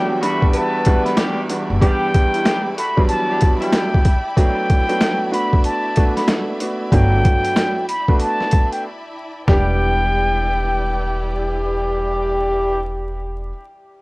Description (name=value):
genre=hip hop, boom-bap hip-hop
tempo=94 BPM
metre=4/4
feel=swing 62% on 16ths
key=E minor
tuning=A4 = 440 Hz
part: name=trumpet with plunger mute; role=melody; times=0.0-11.4 s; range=G5 to B5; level=-22 LUFS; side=equal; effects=high-pass filter, low-pass filter
part: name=warm upright piano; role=accompaniment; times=0.0-13.5 s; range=E2 to G4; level=-22 LUFS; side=right 1 dB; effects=cassette tape, high-pass filter, low-pass filter
part: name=rich studio string section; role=sustained chords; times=0.0-12.8 s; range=E4 to B5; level=-32 LUFS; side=left 1 dB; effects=high-pass filter, low-pass filter
part: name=mellow horn section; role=stabs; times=0.0-3.9, 9.5-12.8 s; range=B2 to B4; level=-24 LUFS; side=left 1 dB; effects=high-pass filter, low-pass filter, tape echo
part: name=boom bap sampler-style drum kit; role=drums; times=0.2-9.7 s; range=hi-hat, kick drum, snare drum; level=-16 LUFS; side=equal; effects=overdrive
part: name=finger snap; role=percussion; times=1.2-9.8 s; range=none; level=-36 LUFS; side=left 2 dB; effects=none
part: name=upright bass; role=bass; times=1.7-1.8, 6.9-13.5 s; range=E1 to G1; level=-21 LUFS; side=equal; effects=transformer saturation
room=light reverb, small room ambience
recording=worn, warbling old tape, cassette tape, vinyl crackle, warbly pitch drift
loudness=-15 LUFS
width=side -24 dB against mid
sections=0.0-9.5 A section; 9.5-12.0 B section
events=break 8.8-9.5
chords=0.0 Em7; 4.4 Gmaj7; 9.5 Em7